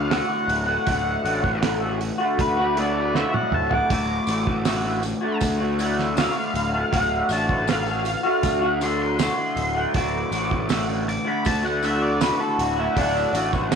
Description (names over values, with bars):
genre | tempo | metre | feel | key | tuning
psychedelic rock | 79 BPM | 4/4 | straight | D major | A4 = 436 Hz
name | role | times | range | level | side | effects
octave-fuzz lead guitar | melody | 0.0-13.3 s | D4 to D6 | -26 LUFS | left 2 dB | distortion, tape echo
electric guitar through a small old amp | riff | 0.0-13.8 s | D2 to F#4 | -23 LUFS | equal | flanger, double-tracked left and right
fuzz picked electric bass | bass | 0.0-13.8 s | D1 to D2 | -28 LUFS | left 1 dB | overdrive
cloth-damped thuddy drum kit | drums | 0.1-13.8 s | hi-hat, kick drum, snare drum, toms | -27 LUFS | right 4 dB | none
tambourine | percussion | 3.9-13.8 s | none | -40 LUFS | left 13 dB | none
room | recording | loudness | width
light reverb, small room reverb | 1960s-style stereo | -20 LUFS | side -6 dB against mid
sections
0.0-13.8 A section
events
lead electric guitar solo 0.0-13.8; drum fill 3.1-3.9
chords
0.0 D